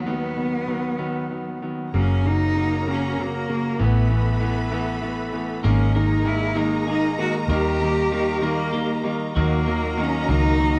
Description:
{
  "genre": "six-eight pop ballad",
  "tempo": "64 BPM (dotted quarters)",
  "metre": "6/8",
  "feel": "straight",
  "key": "unclear",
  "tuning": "A4 = 440 Hz",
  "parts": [
    { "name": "rich cello", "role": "melody", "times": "0.0-10.8 s", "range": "F#3 to G4", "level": "-27 LUFS", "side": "equal", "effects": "none" },
    { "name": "warm symphonic string section", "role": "sustained chords", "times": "0.0-10.8 s", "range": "D#2 to B5", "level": "-33 LUFS", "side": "equal", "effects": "none" },
    { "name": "clear concert grand piano", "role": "accompaniment", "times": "0.1-10.8 s", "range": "C#3 to B3", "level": "-28 LUFS", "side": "equal", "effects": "none" },
    { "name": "vintage muted fingered electric bass", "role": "bass", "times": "1.9-10.8 s", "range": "F#1 to D#2", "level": "-25 LUFS", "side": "equal", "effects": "none" },
    { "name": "twelve-string electric guitar", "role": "arpeggios", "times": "5.6-10.8 s", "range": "F#3 to G#4", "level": "-36 LUFS", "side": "equal", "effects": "digital delay" }
  ],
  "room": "moderate large studio reverb, RT60 0.8 s",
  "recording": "band playing live in one room, nothing above 10.5 kHz",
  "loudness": "-22 LUFS",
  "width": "mono",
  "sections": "0.0-1.9 A section; 1.9-9.4 B section; 9.4-10.8 C section",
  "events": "none",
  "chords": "0.0 B/D#; 1.9 F#; 3.8 Asus2; 5.6 G#sus2; 7.5 D#; 9.4 D#m",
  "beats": "| 0.07 1.00 | 1.94 2.87 | 3.79 4.71 | 5.64 6.56 | 7.49 8.43 | 9.36 10.29"
}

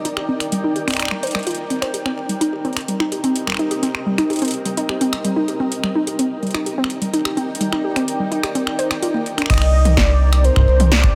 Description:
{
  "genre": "IDM",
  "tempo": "127 BPM",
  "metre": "4/4",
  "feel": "straight",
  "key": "C minor",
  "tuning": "A4 = 440 Hz",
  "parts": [
    { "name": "granular cloud pad", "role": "sustained chords", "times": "0.0-11.2 s", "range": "C4 to G5", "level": "-28 LUFS", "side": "equal", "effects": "built-in reverb" },
    { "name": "warbly dusty pluck", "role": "arpeggios", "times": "0.0-9.5 s", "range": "G3 to C5", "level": "-23 LUFS", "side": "equal", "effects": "chorus, digital delay" },
    { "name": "electro analog drum machine", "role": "drums", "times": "0.1-11.1 s", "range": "crash cymbal, finger snaps, hi-hat, snare drum, toms", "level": "-26 LUFS", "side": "equal", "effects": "digital delay" },
    { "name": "warm velvety synth lead", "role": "melody", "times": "9.5-11.2 s", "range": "C5 to Eb5", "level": "-23 LUFS", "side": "equal", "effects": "chorus, digital delay" },
    { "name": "warm sub bass", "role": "bass", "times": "9.5-11.1 s", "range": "C2", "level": "-16 LUFS", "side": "equal", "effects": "none" },
    { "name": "electronic kick drum", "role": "drums", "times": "9.5-11.1 s", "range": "none", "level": "-18 LUFS", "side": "equal", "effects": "none" }
  ],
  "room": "light reverb",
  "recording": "none",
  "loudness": "-19 LUFS",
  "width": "mono",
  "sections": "0.0-9.5 A section; 9.5-11.2 B section",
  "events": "filter sweep on synth arpeggio sound 0.0-9.5",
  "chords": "0.0 Ebmaj7; 1.9 Cm7; 5.7 Ebmaj7; 9.5 Cm7",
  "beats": "| 0.05 0.52 0.99 1.47 | 1.94 2.41 2.88 3.36 | 3.83 4.30 4.77 5.25 | 5.72 6.19 6.66 7.14 | 7.61 8.08 8.55 9.03 | 9.50 9.97 10.44 10.91"
}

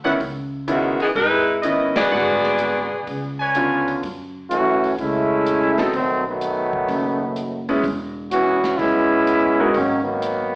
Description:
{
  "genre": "jazz, big band swing",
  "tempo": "126 BPM",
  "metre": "4/4",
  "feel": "swing 68% on 8ths",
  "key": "C# minor",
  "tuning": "A4 = 439 Hz",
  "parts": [
    { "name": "bright concert grand piano", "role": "accompaniment", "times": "0.0-9.7 s", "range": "D3 to B4", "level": "-22 LUFS", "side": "equal", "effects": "slapback echo" },
    { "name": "warm trumpet section", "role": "stabs", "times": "0.0-4.0 s", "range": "E4 to G#5", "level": "-22 LUFS", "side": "equal", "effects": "slapback echo" },
    { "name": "upright bass", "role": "bass", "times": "0.0-10.6 s", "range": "E1 to F#2", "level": "-32 LUFS", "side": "equal", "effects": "none" },
    { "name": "swinging big-band drum kit", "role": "drums", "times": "0.0-10.4 s", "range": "hi-hat, kick drum, ride cymbal, snare drum", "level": "-34 LUFS", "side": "equal", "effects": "none" },
    { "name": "bright saxophone section", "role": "melody", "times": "0.7-3.4 s", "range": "D#3 to D5", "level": "-18 LUFS", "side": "left 1 dB", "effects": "none" },
    { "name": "brilliant trombone section", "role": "second line", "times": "4.5-10.6 s", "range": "D#3 to F#4", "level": "-17 LUFS", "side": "equal", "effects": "none" }
  ],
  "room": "moderate club reverb, RT60 0.7 s",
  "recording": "live gig heard through the venue's PA, club reverb, AM radio sound",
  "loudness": "-17 LUFS",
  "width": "side -25 dB against mid",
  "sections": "0.0-4.0 A section; 4.0-10.6 B section",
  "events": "band accent 1.9; trombone section solo 4.0-10.6",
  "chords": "0.2 C#m9; 2.1 G#m7b5; 3.1 C#7b9; 4.0 F#m9; 5.9 B7; 7.8 E6; 9.7 G#m9",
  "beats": "| 0.20 0.68 1.16 1.63 | 2.11 2.59 3.06 3.54 | 4.02 4.50 4.97 5.45 | 5.93 6.41 6.88 7.36 | 7.83 8.31 8.79 9.27 | 9.74 10.22"
}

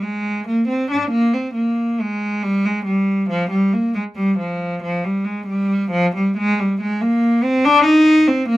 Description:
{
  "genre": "classical, baroque-style suite movement for unaccompanied cello",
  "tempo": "69 BPM",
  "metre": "4/4",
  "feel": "rubato",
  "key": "unclear",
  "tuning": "A4 = 440 Hz",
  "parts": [
    { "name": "rich cello", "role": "solo", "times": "0.0-8.6 s", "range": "F3 to Eb4", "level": "-16 LUFS", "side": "equal", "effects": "none" }
  ],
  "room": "light reverb",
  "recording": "close, detailed microphones",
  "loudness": "-16 LUFS",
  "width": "side -16 dB against mid",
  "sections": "0.0-8.6 A section",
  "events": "none",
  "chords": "none",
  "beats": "0.69 1.58 | 2.45 3.32 4.18 5.05 | 5.92 6.78 7.63 8.49"
}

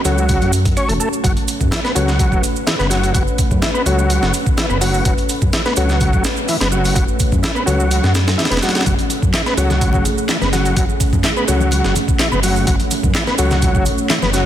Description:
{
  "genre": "breakbeat, breaks",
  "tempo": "126 BPM",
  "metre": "4/4",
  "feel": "straight",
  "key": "F# minor",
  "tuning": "A4 = 442 Hz",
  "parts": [
    { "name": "dark analog pad", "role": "sustained chords", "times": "0.0-14.5 s", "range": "A3 to C#5", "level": "-24 LUFS", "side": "right 1 dB", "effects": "chorus, sidechain pumping" },
    { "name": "dark detuned saw bass", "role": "bass", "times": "0.0-14.5 s", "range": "E1 to F#2", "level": "-18 LUFS", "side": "equal", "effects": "none" },
    { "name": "tonewheel organ", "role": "riff", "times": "0.1-14.5 s", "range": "E3 to C#4", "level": "-20 LUFS", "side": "equal", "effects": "chorus vibrato, overdrive, vintage 12-bit sampler grit, digital delay" },
    { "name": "mellow tine electric piano", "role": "stabs", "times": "0.1-13.5 s", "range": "C#4 to C#5", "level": "-27 LUFS", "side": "left 6 dB", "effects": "digital delay" },
    { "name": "breakbeat sampler-style drum kit", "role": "drums", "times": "0.1-14.5 s", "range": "hi-hat, kick drum, snare drum", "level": "-18 LUFS", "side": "equal", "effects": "none" },
    { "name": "electronic shaker and handclaps", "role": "drums", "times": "0.1-14.4 s", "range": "none", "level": "-26 LUFS", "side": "right 5 dB", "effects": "none" },
    { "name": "congas", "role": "percussion", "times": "8.9-14.3 s", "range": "none", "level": "-27 LUFS", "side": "left 5 dB", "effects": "none" }
  ],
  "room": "light reverb, digital ambience",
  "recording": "dense, heavily limited modern master",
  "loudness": "-14 LUFS",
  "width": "side -11 dB against mid",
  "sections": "0.0-14.5 A section",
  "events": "none",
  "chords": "0.0 F#m",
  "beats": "0.29 0.77 | 1.24 1.72 2.20 2.67 | 3.15 3.62 4.10 4.58 | 5.05 5.53 6.01 6.48 | 6.96 7.43 7.91 8.39 | 8.86 9.34 9.82 10.29 | 10.77 11.24 11.72 12.20 | 12.67 13.15 13.62 14.10"
}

